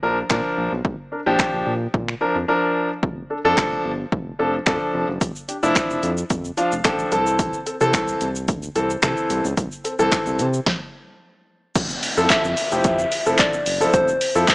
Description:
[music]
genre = dance-pop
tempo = 110 BPM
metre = 4/4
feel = straight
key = F major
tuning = A4 = 440 Hz
[part]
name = clear concert grand piano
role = accompaniment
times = 0.0-14.5 s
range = E3 to A5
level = -20 LUFS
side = equal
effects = sidechain pumping
[part]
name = round analog bass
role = bass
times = 0.0-14.5 s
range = F1 to C3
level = -26 LUFS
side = equal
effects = sidechain pumping
[part]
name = punchy analog drum machine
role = drums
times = 0.3-14.5 s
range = crash cymbal, finger snaps, handclaps, hi-hat, kick drum, shaker, snare drum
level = -22 LUFS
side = equal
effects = none
[part]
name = group handclap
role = percussion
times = 0.3-10.3 s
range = none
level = -27 LUFS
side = equal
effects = none
[part]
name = downlifter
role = sound effects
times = 11.8-14.5 s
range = none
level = -30 LUFS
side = equal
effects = none
[part]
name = soft struck synth lead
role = melody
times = 12.3-14.5 s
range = C5 to E5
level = -21 LUFS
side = left 1 dB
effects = chorus
[sound]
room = light reverb, digital ambience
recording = dry, gritty hardware recording, small speaker sound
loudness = -18 LUFS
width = side -24 dB against mid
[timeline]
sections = 0.0-11.8 A section; 11.8-14.5 B section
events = silent gap 2.5-3.0; grand piano fill 6.3-7.4; stop 10.7-11.8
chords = 0.0 Bb; 3.0 F6; 7.1 C6; 11.8 Fmaj7

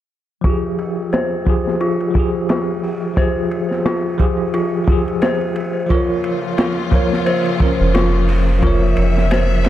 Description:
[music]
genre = trip hop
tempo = 88 BPM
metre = 4/4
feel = swing 57% on 16ths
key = F harmonic minor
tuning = A4 = 440 Hz
[part]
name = bell-like tine electric piano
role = accompaniment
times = 0.4-9.7 s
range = F3 to Db5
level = -20 LUFS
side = equal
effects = medium stereo tremolo, vintage 12-bit sampler grit, low-pass filter, tape echo
[part]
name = dark detuned synth bell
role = arpeggios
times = 0.4-9.7 s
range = F4 to C5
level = -22 LUFS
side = left 2 dB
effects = chorus, vintage 12-bit sampler grit, low-pass filter, digital delay
[part]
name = crunchy breakbeat drum kit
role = drums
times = 0.4-9.7 s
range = hi-hat, kick drum, ride cymbal, snare drum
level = -20 LUFS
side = equal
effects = low-pass filter on kick, low-pass filter on cymbals, low-pass filter on hats, low-pass filter on snare, low-pass filter on room
[part]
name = warm symphonic string section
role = sustained chords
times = 5.9-9.7 s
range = Db3 to E5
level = -25 LUFS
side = left 2 dB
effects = none
[part]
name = soft dub sub bass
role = bass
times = 7.8-9.7 s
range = F1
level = -16 LUFS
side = equal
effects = none
[sound]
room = little or no reverb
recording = none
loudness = -15 LUFS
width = side -12 dB against mid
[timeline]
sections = 0.4-9.7 A section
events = filter sweep on tine electric piano 0.4-9.7; filter sweep on synth bell 0.4-9.7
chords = 0.4 Fmadd9; 5.9 Bbm

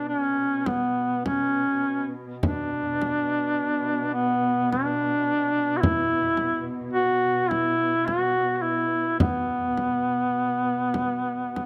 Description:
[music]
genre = caucasian folk, Caucasian lament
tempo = 47-55 BPM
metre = 3/4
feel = rubato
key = B minor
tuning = A4 = 440 Hz
[part]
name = clear duduk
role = melody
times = 0.0-11.7 s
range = B3 to F#4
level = -25 LUFS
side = equal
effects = none
[part]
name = dark chamber string section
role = drone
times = 0.0-11.7 s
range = B2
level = -36 LUFS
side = equal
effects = none
[part]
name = frame drum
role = percussion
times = 0.7-11.7 s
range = none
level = -29 LUFS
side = equal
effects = none
[sound]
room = light reverb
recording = close, detailed microphones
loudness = -25 LUFS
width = mono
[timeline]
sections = 0.0-11.7 A section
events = none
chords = none

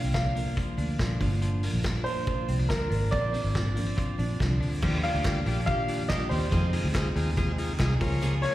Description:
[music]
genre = jangly indie pop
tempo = 141 BPM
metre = 4/4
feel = straight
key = Eb major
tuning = A4 = 436 Hz
[part]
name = clear upright piano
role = melody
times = 0.0-8.5 s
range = Bb4 to F5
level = -33 LUFS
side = right 1 dB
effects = plate reverb, slapback echo, tape echo
[part]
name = picked steel-string acoustic guitar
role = accompaniment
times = 0.0-8.5 s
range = F2 to Ab4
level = -35 LUFS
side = right 4 dB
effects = none
[part]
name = twelve-string electric guitar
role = arpeggios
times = 0.0-8.5 s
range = F3 to Ab4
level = -36 LUFS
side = left 4 dB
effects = plate reverb, slapback echo
[part]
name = vintage muted fingered electric bass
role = bass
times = 0.0-8.5 s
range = G1 to F2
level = -28 LUFS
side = equal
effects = none
[part]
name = vintage drum kit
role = drums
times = 0.1-8.5 s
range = crash cymbal, hi-hat, kick drum, snare drum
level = -31 LUFS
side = equal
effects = none
[part]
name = overdriven combo organ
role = accompaniment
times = 4.8-8.5 s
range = F4 to Eb5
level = -35 LUFS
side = left 3 dB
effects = plate reverb, slapback echo
[part]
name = group handclap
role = percussion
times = 5.3-7.9 s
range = none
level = -41 LUFS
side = right 2 dB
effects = none
[sound]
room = light reverb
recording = live gig heard through the venue's PA, recital hall reverb, vinyl crackle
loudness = -25 LUFS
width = side -15 dB against mid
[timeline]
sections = 0.0-4.8 A section; 4.8-8.5 B section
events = none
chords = 0.0 Bb; 1.2 Gm7; 3.1 Bbadd9; 4.8 Ebmaj9; 6.5 Fm7; 8.0 Db6

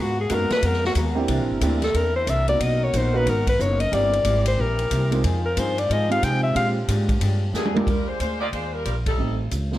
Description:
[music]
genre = jazz, big band swing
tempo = 182 BPM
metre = 4/4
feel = swing 63% on 8ths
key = Eb major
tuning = A4 = 440 Hz
[part]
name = warm alto saxophone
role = melody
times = 0.0-6.7 s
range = Gb4 to G5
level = -23 LUFS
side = left 2 dB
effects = plate reverb
[part]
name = vintage hollow-body jazz guitar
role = accompaniment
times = 0.0-7.8 s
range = Bb2 to Bb4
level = -30 LUFS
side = left 3 dB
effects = none
[part]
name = dark saxophone section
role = sustained chords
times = 0.0-7.9 s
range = Cb3 to Bb4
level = -35 LUFS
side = right 2 dB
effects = none
[part]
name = upright bass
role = bass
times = 0.0-9.8 s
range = F#1 to C3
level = -24 LUFS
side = equal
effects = none
[part]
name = warm concert grand piano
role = accompaniment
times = 0.3-9.8 s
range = Gb3 to Bb4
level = -27 LUFS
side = right 4 dB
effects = none
[part]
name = swinging big-band drum kit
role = drums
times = 0.3-9.8 s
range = hi-hat, kick drum, ride cymbal, snare drum, toms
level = -28 LUFS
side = equal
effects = none
[part]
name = clear saxophone section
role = melody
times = 7.6-9.4 s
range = F3 to D5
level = -28 LUFS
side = left 1 dB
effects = plate reverb
[part]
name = clear trumpet section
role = stabs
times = 8.4-8.5 s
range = F4 to Eb5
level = -32 LUFS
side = right 2 dB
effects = none
[sound]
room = moderate large studio reverb, RT60 1.0 s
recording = none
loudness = -19 LUFS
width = side -14 dB against mid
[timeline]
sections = 0.0-7.9 A section; 7.9-9.8 B section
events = alto saxophone solo 0.0-7.9; drum fill 7.5-7.9; band accent 9.0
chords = 0.0 Abm9; 1.3 C9; 2.6 Bmaj7; 3.9 C7; 5.2 Fm7; 6.6 Bb13; 7.9 Ebmaj9; 9.2 Am7b5

